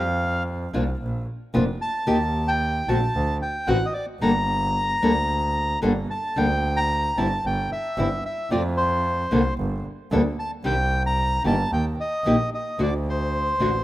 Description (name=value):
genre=tango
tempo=112 BPM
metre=4/4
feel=rubato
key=G minor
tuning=A4 = 440 Hz
part: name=bandoneon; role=melody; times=0.0-13.8 s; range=C5 to Bb5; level=-25 LUFS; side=equal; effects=none
part: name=nylon-string guitar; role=accompaniment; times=0.0-13.7 s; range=C3 to A4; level=-25 LUFS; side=left 1 dB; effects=none
part: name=clear double bass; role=bass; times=0.0-13.8 s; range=F1 to F2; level=-25 LUFS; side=right 1 dB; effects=none
room=light reverb, studio reverb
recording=rough home demo mix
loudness=-21 LUFS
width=side -15 dB against mid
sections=0.0-13.8 A section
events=none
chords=0.0 F5; 1.0 Bb5; 2.1 Eb; 3.1 D; 4.2 Gmadd9; 7.4 C/G (rootless); 8.5 F; 9.6 Gsus2; 10.7 Cm; 11.7 Eb; 12.8 D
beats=0.47 1.01 1.54 | 2.08 2.61 3.15 3.68 | 4.21 4.75 5.29 5.83 | 6.37 6.91 7.45 7.98 | 8.52 9.05 9.59 10.12 | 10.65 11.19 11.72 12.26 | 12.79 13.33